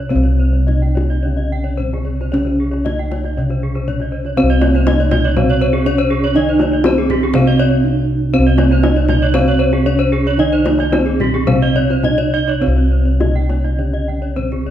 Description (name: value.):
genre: Balinese gamelan.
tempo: 103-122 BPM.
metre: 4/4.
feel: straight.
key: C pelog.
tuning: A4 = 440 Hz.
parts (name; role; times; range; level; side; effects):
gamelan-type bronze metallophone; melody; 0.0-14.7 s; C4 to Eb4-30c; -19 LUFS; right 2 dB; none.
gamelan-type bronze metallophone; arpeggios; 0.0-14.7 s; G4-30c to G5-30c; -24 LUFS; right 5 dB; none.
gamelan-type bossed gongs; bass; 0.0-14.7 s; C2 to Eb4-30c; -16 LUFS; equal; none.
gamelan-type bronze metallophone; accompaniment; 0.1-14.7 s; C3 to Eb3-30c; -23 LUFS; right 2 dB; none.
gamelan-type bronze metallophone; arpeggios; 0.1-14.7 s; Ab4-20c to Eb5-30c; -22 LUFS; left 5 dB; none.
kendang; percussion; 0.1-14.6 s; none; -22 LUFS; left 3 dB; none.
room: moderate scoring stage reverb, RT60 1.7 s.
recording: dark, warm production.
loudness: -13 LUFS.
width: side -11 dB against mid.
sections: 0.0-4.4 A section; 4.4-12.6 B section; 12.6-14.7 A section.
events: break 7.6-8.3.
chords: none.